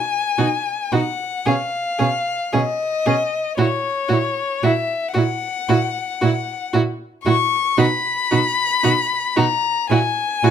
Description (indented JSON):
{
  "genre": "classical, slow romantic movement for string quartet",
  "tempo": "57 BPM",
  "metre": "4/4",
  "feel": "rubato",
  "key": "B major",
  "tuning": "A4 = 441 Hz",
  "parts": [
    { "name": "warm violin", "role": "melody", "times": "0.0-10.5 s", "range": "C#5 to C#6", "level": "-20 LUFS", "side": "left 5 dB", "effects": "none" },
    { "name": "rich violin", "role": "second line", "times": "0.4-10.5 s", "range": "F#4 to G#4", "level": "-23 LUFS", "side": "left 1 dB", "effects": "none" },
    { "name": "warm viola", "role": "accompaniment", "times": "0.4-10.5 s", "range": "C#4 to E4", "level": "-23 LUFS", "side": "right 5 dB", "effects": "none" },
    { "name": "rich cello", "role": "bass", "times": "0.4-10.5 s", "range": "A#2 to B2", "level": "-21 LUFS", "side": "right 5 dB", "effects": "none" }
  ],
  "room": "light reverb",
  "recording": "minimal, uncompressed stereo recording",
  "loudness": "-17 LUFS",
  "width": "side -8 dB against mid",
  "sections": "0.0-10.5 A section",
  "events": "none",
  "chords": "0.0 B; 1.5 C#7/B; 3.6 F#7/A#; 7.8 B; 9.9 F#7"
}